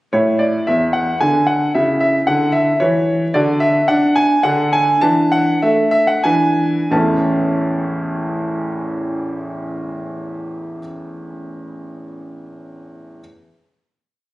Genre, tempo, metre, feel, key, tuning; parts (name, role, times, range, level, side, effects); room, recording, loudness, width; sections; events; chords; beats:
classical-period piano sonatina; 88-113 BPM; 3/4; straight; A major; A4 = 442 Hz
bright grand piano; solo; 0.1-13.2 s; A1 to A5; -15 LUFS; equal
wet recital hall reverb, RT60 1.5 s; recorded on a phone in the room, club reverb, compression; -14 LUFS; side -17 dB against mid
0.1-6.9 theme; 6.9-11.0 final chord
slowing down 2.5-6.9
0.1 A5; 1.2 N.C.; 1.7 C#madd11; 3.3 D; 4.4 N.C.; 5.0 E7sus4; 6.2 E7; 6.9 A
| 0.12 0.66 1.20 | 1.74 2.27 2.81 | 3.34 3.89 4.45 | 5.02 5.62 6.25 | 6.92 7.60 8.28 | 8.96 9.63 10.31